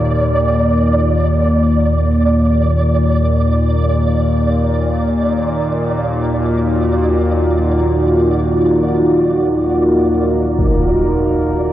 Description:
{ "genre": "dark ambient drone", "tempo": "free time", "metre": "none", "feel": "none", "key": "Eb harmonic minor", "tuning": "A4 = 441 Hz", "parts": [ { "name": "analog drone", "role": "drone", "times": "0.0-11.7 s", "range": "Eb2 to Bb2", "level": "-15 LUFS", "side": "left 1 dB", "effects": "chorus" }, { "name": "flickering grainy texture", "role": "texture", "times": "0.0-11.7 s", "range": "D5", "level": "-21 LUFS", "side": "right 2 dB", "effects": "built-in reverb" }, { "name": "dark analog pad", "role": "sustained chords", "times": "5.8-11.7 s", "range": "Eb4 to Bb4", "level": "-15 LUFS", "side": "equal", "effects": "chorus" }, { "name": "impact", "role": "percussion", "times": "10.6-10.8 s", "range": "none", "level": "-19 LUFS", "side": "equal", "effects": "low-pass filter on sfx" } ], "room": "wet huge ambient reverb, RT60 8.0 s", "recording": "worn, warbling old tape, cassette tape, warbly pitch drift", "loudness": "-12 LUFS", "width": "side -13 dB against mid", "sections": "0.0-11.7 A section", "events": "fade-out 9.8-11.7", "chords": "0.0 Ebmadd9" }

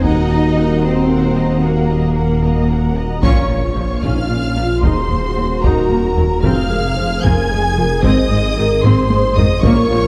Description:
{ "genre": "cinematic, hybrid orchestral and electronic film score", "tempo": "75 BPM (dotted quarters)", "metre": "6/8", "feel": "straight", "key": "Bb minor", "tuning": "A4 = 440 Hz", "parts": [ { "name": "warm symphonic violin section", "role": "melody", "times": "0.0-10.1 s", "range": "Gb5 to Ab6", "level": "-27 LUFS", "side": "equal", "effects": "none" }, { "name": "warm symphonic violin section", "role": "second line", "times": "0.0-10.1 s", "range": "Bb4 to Ab5", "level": "-27 LUFS", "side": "equal", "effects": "none" }, { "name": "rich studio viola section", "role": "accompaniment", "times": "0.0-10.1 s", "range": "Eb3 to Bb5", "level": "-24 LUFS", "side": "equal", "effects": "none" }, { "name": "mellow French horn section", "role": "sustained chords", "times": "0.0-10.1 s", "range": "Bb3 to C5", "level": "-24 LUFS", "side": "equal", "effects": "none" }, { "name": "mellow tuba", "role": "bass", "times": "0.0-3.0 s", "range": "Eb2", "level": "-20 LUFS", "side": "equal", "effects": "none" }, { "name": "rich symphonic cello section", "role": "bass", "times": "0.0-10.0 s", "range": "Eb2 to Eb4", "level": "-25 LUFS", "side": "equal", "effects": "none" }, { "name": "rich symphonic double bass section", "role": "bass", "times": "0.0-10.0 s", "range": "F1 to Eb2", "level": "-25 LUFS", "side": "equal", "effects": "none" }, { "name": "detuned saw bass", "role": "bass", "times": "0.0-10.1 s", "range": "Eb1 to Bb1", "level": "-23 LUFS", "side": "equal", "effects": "chorus" }, { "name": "taiko ensemble", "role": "drums", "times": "0.0-10.1 s", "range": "none", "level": "-20 LUFS", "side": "equal", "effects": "none" }, { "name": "impact", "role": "sound effects", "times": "3.2-4.8 s", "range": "none", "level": "-26 LUFS", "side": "equal", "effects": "none" } ], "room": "moderate scoring stage reverb, RT60 1.9 s", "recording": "none", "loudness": "-15 LUFS", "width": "mono", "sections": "0.0-3.2 A section; 3.2-10.1 B section", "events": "band accent 3.2-3.8; impact 3.2-4.8; drum fill 8.8-9.6", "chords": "0.0 Ebm; 3.2 Bbm; 4.8 Ebm; 6.4 Fm; 8.0 Ab" }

